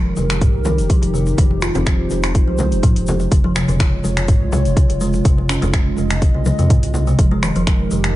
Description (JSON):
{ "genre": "afro house", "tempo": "124 BPM", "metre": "4/4", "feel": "straight", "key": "F minor", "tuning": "A4 = 441 Hz", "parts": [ { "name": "dark analog pad", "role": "sustained chords", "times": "0.1-8.2 s", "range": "Ab3 to Eb5", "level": "-24 LUFS", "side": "right 1 dB", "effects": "chorus, sidechain pumping" }, { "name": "round analog bass", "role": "bass", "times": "0.0-8.2 s", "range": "F1 to F2", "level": "-21 LUFS", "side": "equal", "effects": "sidechain pumping" }, { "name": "kalimba", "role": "arpeggios", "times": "0.2-8.0 s", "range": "C3 to F4", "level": "-20 LUFS", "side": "equal", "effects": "sidechain pumping, digital delay" }, { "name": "congas", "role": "percussion", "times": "0.2-8.0 s", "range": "none", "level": "-26 LUFS", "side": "left 2 dB", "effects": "none" }, { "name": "egg shaker", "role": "percussion", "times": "0.2-8.1 s", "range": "none", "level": "-36 LUFS", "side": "left 3 dB", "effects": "none" }, { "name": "afro-pop drum kit", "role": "drums", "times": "0.3-8.1 s", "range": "finger snaps, hi-hat, toms", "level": "-24 LUFS", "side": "equal", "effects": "overdrive" }, { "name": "electronic kick drum", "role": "drums", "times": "0.4-7.8 s", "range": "none", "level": "-15 LUFS", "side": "equal", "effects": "none" } ], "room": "little or no reverb", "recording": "nothing above 10.5 kHz", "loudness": "-14 LUFS", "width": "side -15 dB against mid", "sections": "0.0-8.2 A section", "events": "none", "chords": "0.0 Fm11; 3.3 Db/F; 7.2 Fm11", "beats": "0.41 0.90 | 1.38 1.86 2.35 2.83 | 3.32 3.80 4.28 4.77 | 5.25 5.74 6.22 6.70 | 7.19 7.67 8.15" }